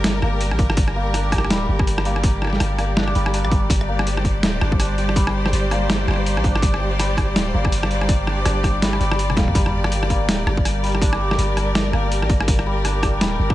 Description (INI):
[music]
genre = half-time drum and bass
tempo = 164 BPM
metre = 4/4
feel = swing 59% on 16ths, half-time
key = G minor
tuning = A4 = 440 Hz
[part]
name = clear studio string section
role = sustained chords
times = 0.0-13.5 s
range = G3 to D5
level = -25 LUFS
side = left 1 dB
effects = sidechain pumping
[part]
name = santur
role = arpeggios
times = 0.0-13.5 s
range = G3 to G4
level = -27 LUFS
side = equal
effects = dub echo
[part]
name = long sustained 808-style bass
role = bass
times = 0.0-13.5 s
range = D1 to C2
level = -22 LUFS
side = equal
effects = none
[part]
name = boom bap sampler-style drum kit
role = drums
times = 0.0-13.5 s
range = hi-hat, rim click, snare drum, toms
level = -24 LUFS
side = equal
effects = overdrive
[part]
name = electronic kick drum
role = drums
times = 0.6-13.5 s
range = none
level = -19 LUFS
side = equal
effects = none
[sound]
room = light reverb, digital ambience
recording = nothing above 10.9 kHz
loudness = -17 LUFS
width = side -15 dB against mid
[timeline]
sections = 0.0-13.5 A section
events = drum fill 9.3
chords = 0.0 Gm